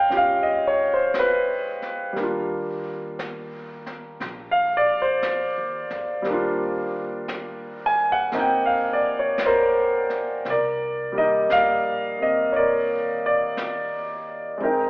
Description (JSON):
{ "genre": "jazz ballad", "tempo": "58 BPM", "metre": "4/4", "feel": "swing 68% on 8ths", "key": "Eb major, C minor from 10.5 s", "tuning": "A4 = 442 Hz", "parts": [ { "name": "warm concert grand piano", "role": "accompaniment", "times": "0.0-14.9 s", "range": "G3 to Ab5", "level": "-20 LUFS", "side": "equal", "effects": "none" }, { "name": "upright bass", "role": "bass", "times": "0.0-14.9 s", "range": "Ab1 to F2", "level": "-44 LUFS", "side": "equal", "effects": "none" }, { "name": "jazz brush drum kit", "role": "drums", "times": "0.1-14.9 s", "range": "brushed snare drum, hi-hat, snare drum", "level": "-35 LUFS", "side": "equal", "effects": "none" } ], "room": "moderate recital hall reverb, RT60 1.7 s", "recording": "recorded in a church or concert hall, telephone sound", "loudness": "-20 LUFS", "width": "side -24 dB against mid", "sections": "0.0-10.5 A section; 10.5-14.9 B section", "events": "none", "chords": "0.0 Db9; 2.2 Ebmaj9; 10.5 Cm9" }